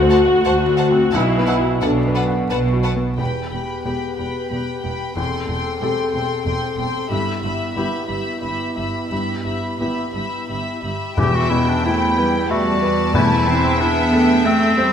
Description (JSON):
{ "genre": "cinematic, emotional film score for orchestra", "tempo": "87-93 BPM", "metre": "3/4", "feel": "rubato", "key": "E minor", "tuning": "A4 = 439 Hz", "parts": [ { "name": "dark symphonic viola section", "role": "accompaniment", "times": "0.0-14.9 s", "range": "A3 to B4", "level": "-23 LUFS", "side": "left 1 dB", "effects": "none" }, { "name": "felt-muted upright piano", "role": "accompaniment", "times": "0.0-14.9 s", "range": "B1 to F#5", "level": "-24 LUFS", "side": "left 2 dB", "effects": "none" }, { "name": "rich symphonic cello section", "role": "bass", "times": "0.0-14.9 s", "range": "D2 to C4", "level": "-23 LUFS", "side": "right 1 dB", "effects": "none" }, { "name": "warm studio double bass section", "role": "bass", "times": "0.0-14.9 s", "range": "E1 to E2", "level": "-25 LUFS", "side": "right 3 dB", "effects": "none" }, { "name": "warm symphonic violin section", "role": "melody", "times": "0.1-14.9 s", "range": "G5 to C6", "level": "-29 LUFS", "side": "left 3 dB", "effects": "none" }, { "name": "dark symphonic violin section", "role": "second line", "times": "0.1-14.9 s", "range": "B4 to G5", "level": "-27 LUFS", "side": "left 2 dB", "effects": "none" }, { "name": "mellow French horn section", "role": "sustained chords", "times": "3.2-10.8 s", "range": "B3 to A4", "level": "-28 LUFS", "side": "left 3 dB", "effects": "none" }, { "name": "warm clarinet", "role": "second line", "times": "11.2-14.9 s", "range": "C4 to G4", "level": "-20 LUFS", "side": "left 1 dB", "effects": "none" }, { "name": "timpani", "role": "percussion", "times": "11.2-14.1 s", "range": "E2", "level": "-23 LUFS", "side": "left 1 dB", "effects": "none" } ], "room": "moderate scoring stage reverb, RT60 1.7 s", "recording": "none", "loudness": "-17 LUFS", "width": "side -8 dB against mid", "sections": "0.0-3.2 A section; 3.2-11.2 B section; 11.2-14.9 C section", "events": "none", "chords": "0.0 D7; 1.1 Bm7; 3.2 Em; 5.2 C6/E; 7.1 Em/G; 11.2 Em" }